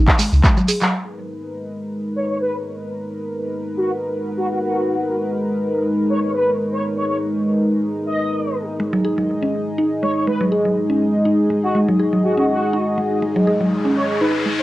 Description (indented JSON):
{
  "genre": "afro house",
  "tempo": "122 BPM",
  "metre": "4/4",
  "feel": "swing 54% on 16ths",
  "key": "G# minor",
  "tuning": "A4 = 441 Hz",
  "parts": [
    { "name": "mallet-like synth pluck", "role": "arpeggios", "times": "0.0-0.9, 8.8-14.5 s", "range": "F#3 to G#4", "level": "-20 LUFS", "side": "equal", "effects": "chorus, sidechain pumping, cassette tape, analog delay" },
    { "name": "deep house drum kit", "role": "drums", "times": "0.1-0.9 s", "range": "handclaps, hi-hat", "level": "-20 LUFS", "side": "equal", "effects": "cassette tape" },
    { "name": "electronic kick drum", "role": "drums", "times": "0.1-0.5 s", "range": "none", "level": "-14 LUFS", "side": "equal", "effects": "cassette tape" },
    { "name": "shekere", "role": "percussion", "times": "0.2-0.9 s", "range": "none", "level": "-25 LUFS", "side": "right 7 dB", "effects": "none" },
    { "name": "warm analog pad", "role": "sustained chords", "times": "0.9-14.6 s", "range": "G#3 to D#5", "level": "-20 LUFS", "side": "equal", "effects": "chorus, sidechain pumping, cassette tape" },
    { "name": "expressive synth lead", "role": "melody", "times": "2.2-14.6 s", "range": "F#4 to D#5", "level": "-23 LUFS", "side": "equal", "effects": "ensemble chorus, cassette tape, analog delay" },
    { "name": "riser", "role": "sound effects", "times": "13.3-14.6 s", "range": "none", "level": "-27 LUFS", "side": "left 2 dB", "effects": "none" }
  ],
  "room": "wet small room reverb, RT60 0.5 s",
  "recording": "home recording on cassette",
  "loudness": "-17 LUFS",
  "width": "side -16 dB against mid",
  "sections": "0.9-14.6 A section",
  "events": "band accent 0.8; riser 13.3-14.6",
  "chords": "0.0 G#5; 0.9 G#m"
}